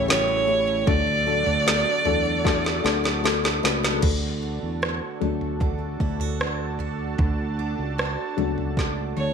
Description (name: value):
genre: pop ballad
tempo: 76 BPM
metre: 4/4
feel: straight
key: D major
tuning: A4 = 441 Hz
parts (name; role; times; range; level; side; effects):
- warm violin; melody; 0.0-3.2, 9.2-9.3 s; C#5 to D5; -23 LUFS; right 3 dB; slapback echo
- dark upright piano; accompaniment; 0.0-9.3 s; A2 to B4; -28 LUFS; left 16 dB; none
- lush unison pad; sustained chords; 0.0-9.3 s; C#3 to A5; -34 LUFS; right 3 dB; chorus
- picked steel-string acoustic guitar; arpeggios; 0.0-9.3 s; A2 to G4; -34 LUFS; right 14 dB; none
- fingered electric bass; bass; 0.0-9.3 s; A1 to E2; -29 LUFS; equal; none
- smooth R&B drum kit; drums; 0.1-9.3 s; crash cymbal, kick drum, rim click, snare drum, toms; -25 LUFS; right 1 dB; none
room: digital ambience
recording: 1960s-style stereo with parts hard left and right, faint mains hum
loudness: -21 LUFS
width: side -6 dB against mid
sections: 0.0-4.0 A section; 4.0-9.3 B section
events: drum fill 2.5-4.0, 8.8-9.3; upright piano solo 4.0-9.3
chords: 0.0 A7; 0.9 D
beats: 0.09 | 0.88 1.66 2.45 3.24 | 4.03 4.82 5.61 6.40 | 7.19 7.98 8.77